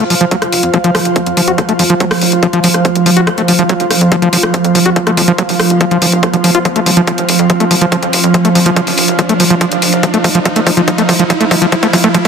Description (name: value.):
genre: psychedelic trance.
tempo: 142 BPM.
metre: 4/4.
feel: straight.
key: unclear.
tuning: A4 = 440 Hz.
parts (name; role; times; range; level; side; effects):
evolving wavetable pad; sustained chords; 0.5-12.3 s; F3; -15 LUFS; right 3 dB; ensemble chorus, built-in reverb, phaser, sidechain pumping.
overdriven acid bass; riff; 0.0-12.3 s; F3 to Gb4; -14 LUFS; moving between left 4 dB and right 4 dB; auto-pan, sidechain pumping, digital delay.
tight sequencer bass; bass; 0.0-12.3 s; F1 to F2; -23 LUFS; equal; high-pass filter.
drum and bass drum kit; drums; 0.0-12.3 s; hi-hat, rim click; -16 LUFS; left 1 dB; overdrive.
riser; sound effects; 0.0-12.3 s; none; -22 LUFS; right 1 dB; none.
airy breathy pad; texture; 0.0-12.3 s; F4 to F5; -18 LUFS; equal; chorus, sidechain pumping.
electronic kick drum; drums; 0.3-12.3 s; none; -15 LUFS; equal; overdrive, high-pass filter on kick.
room: moderate plate reverb, RT60 2.1 s.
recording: dense, heavily limited modern master.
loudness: -9 LUFS.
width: side -6 dB against mid.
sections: 0.0-12.3 A section.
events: build-up 0.0-12.3; riser 0.0-12.3; filter sweep on ambient pad 0.0-12.3; drum fill 6.7-12.3.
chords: 0.0 F5.